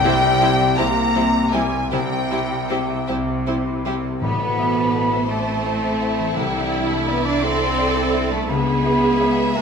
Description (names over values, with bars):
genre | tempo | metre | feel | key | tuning
cinematic, emotional film score for orchestra | 51-57 BPM (dotted quarters) | 6/8 | rubato | A minor from 4.2 s | A4 = 436 Hz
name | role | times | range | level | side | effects
rich studio violin section | melody | 0.0-9.6 s | G4 to Bb5 | -27 LUFS | left 3 dB | none
baroque flute | second line | 0.0-9.6 s | G5 to D6 | -24 LUFS | left 2 dB | none
rich symphonic violin section | second line | 0.0-9.6 s | E4 to E5 | -28 LUFS | left 1 dB | none
clear grand piano | accompaniment | 0.0-9.6 s | A1 to E5 | -27 LUFS | left 3 dB | none
rich symphonic viola section | accompaniment | 0.0-9.6 s | G3 to A4 | -26 LUFS | right 3 dB | none
dark French horn section | sustained chords | 0.0-9.6 s | B2 to D4 | -26 LUFS | left 2 dB | none
concert harp | arpeggios | 0.0-9.6 s | A2 to A5 | -28 LUFS | left 5 dB | none
rich studio double bass section | bass | 0.0-9.6 s | A1 to C#2 | -29 LUFS | right 4 dB | none
rich symphonic cello section | bass | 0.0-9.6 s | C3 to D4 | -25 LUFS | right 5 dB | none
timpani | percussion | 4.2-5.3 s | A2 | -31 LUFS | left 1 dB | none
room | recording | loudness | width
wet recital hall reverb, RT60 1.7 s | minimal, uncompressed stereo recording | -17 LUFS | side -6 dB against mid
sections
0.0-4.2 A section; 4.2-9.6 B section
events
none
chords
0.0 C; 4.2 Amadd9; 6.4 Cadd9; 8.5 C#m7